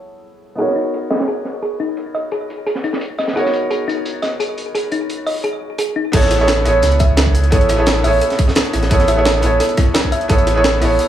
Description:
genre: liquid drum and bass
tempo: 173 BPM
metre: 4/4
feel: straight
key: A major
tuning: A4 = 442 Hz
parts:
  - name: felt-muted upright piano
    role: accompaniment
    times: 0.0-11.1 s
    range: B3 to C#5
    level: -18 LUFS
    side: right 2 dB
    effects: dub echo
  - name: thumb-piano-like synth pluck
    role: arpeggios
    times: 0.6-10.9 s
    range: D#4 to E5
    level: -22 LUFS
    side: left 2 dB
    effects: chorus, digital delay
  - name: crunchy breakbeat drum kit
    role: drums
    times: 0.6-11.1 s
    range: hi-hat, snare drum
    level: -25 LUFS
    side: right 2 dB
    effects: high-pass filter on hats, high-pass filter on snare, high-pass filter on room
  - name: sub bass with octave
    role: bass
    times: 6.1-11.0 s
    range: A1 to C#2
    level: -16 LUFS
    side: equal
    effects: none
  - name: electronic kick drum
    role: drums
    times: 6.1-10.4 s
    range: none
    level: -15 LUFS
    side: equal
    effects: overdrive
  - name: jungle sampler-style drum kit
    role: drums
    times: 6.1-11.1 s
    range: crash cymbal, hi-hat, snare drum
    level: -21 LUFS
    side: equal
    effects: overdrive
room: light reverb, small room ambience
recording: low-pass filter, studio reverb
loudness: -14 LUFS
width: side -11 dB against mid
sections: 0.0-6.1 A section; 6.1-11.1 B section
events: filter sweep 0.0-6.1; drop 6.1-11.1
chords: 0.0 Amaj9; 0.6 Bmaj9; 6.1 Amaj9

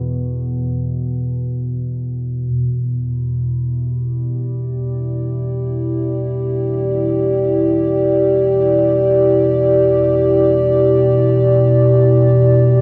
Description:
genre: dark ambient drone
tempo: free time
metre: none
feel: none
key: E minor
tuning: A4 = 440 Hz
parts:
  - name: deep rumbling drone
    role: drone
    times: 0.0-12.8 s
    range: E2 to B2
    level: -20 LUFS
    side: equal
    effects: built-in reverb
  - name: dark analog pad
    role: sustained chords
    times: 4.8-12.8 s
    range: E4 to D5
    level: -17 LUFS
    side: equal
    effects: chorus
room: wet plate reverb, RT60 2.5 s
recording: dreamy mix soaked in reverb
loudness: -16 LUFS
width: mono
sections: 0.0-2.5 A section; 2.5-12.8 A section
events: none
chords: 0.0 E5; 2.5 Em

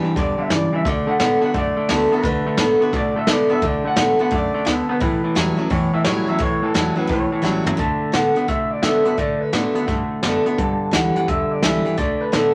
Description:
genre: rockabilly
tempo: 173 BPM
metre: 4/4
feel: swing 64% on 8ths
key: D major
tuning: A4 = 440 Hz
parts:
  - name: electric guitar through a small old amp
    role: melody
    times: 0.0-12.5 s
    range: A4 to F#5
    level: -26 LUFS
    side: equal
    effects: none
  - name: picked steel-string acoustic guitar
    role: accompaniment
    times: 0.0-12.5 s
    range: E2 to G4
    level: -24 LUFS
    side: equal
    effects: none
  - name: semi-hollow electric guitar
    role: riff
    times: 0.0-12.5 s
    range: G2 to B3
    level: -24 LUFS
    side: equal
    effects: none
  - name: upright bass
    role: bass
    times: 0.0-12.5 s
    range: F#1 to D3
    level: -35 LUFS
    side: equal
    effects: none
  - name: jazz brush drum kit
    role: drums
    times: 0.2-12.4 s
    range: hi-hat, kick drum, snare drum, toms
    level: -26 LUFS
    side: equal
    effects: none
room: light reverb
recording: none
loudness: -19 LUFS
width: mono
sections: 0.0-7.8 A section; 7.8-12.5 B section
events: drum fill 7.4-7.8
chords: 0.0 G; 0.9 D; 5.0 A7; 7.8 D; 10.6 G; 12.0 D

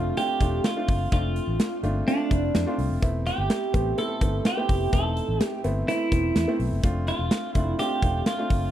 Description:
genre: 1980s-style pop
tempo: 126 BPM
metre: 4/4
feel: straight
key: unclear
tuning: A4 = 440 Hz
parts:
  - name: twelve-string electric guitar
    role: melody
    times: 0.0-8.7 s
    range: D4 to A4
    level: -27 LUFS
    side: right 2 dB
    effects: slapback echo
  - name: clear concert grand piano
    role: accompaniment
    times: 0.0-8.7 s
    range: A3 to G4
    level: -30 LUFS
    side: left 1 dB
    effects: none
  - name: vintage muted fingered electric bass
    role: bass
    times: 0.0-8.7 s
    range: E1 to F2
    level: -27 LUFS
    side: equal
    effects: none
  - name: big rock drum kit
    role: drums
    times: 0.2-8.6 s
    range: hi-hat, kick drum, snare drum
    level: -26 LUFS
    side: equal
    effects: none
room: light reverb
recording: dry, close 1970s-style studio recording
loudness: -22 LUFS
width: side -11 dB against mid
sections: 0.0-8.7 A section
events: none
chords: 0.0 F6; 3.0 Amadd9/E; 6.8 F6

